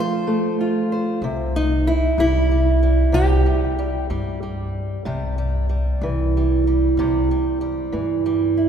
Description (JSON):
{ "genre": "acoustic country blues, solo or duo", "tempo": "63 BPM (dotted quarters)", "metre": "12/8", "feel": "straight", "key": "C major", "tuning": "A4 = 437 Hz", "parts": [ { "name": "fingerpicked old ladder-braced acoustic guitar", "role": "melody", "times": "0.0-8.7 s", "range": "C3 to C5", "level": "-20 LUFS", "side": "right 2 dB", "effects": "none" }, { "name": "upright bass", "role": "bass", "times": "1.2-8.7 s", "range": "C2 to G2", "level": "-21 LUFS", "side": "left 1 dB", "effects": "none" } ], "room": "wet church reverb, RT60 3.0 s", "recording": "recorded in a church or concert hall", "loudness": "-18 LUFS", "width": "side -8 dB against mid", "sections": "0.0-8.7 A section", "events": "none", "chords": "0.0 F; 1.2 C", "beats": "0.28 | 1.24 2.19 3.15 4.11 | 5.07 6.02 6.98 7.94" }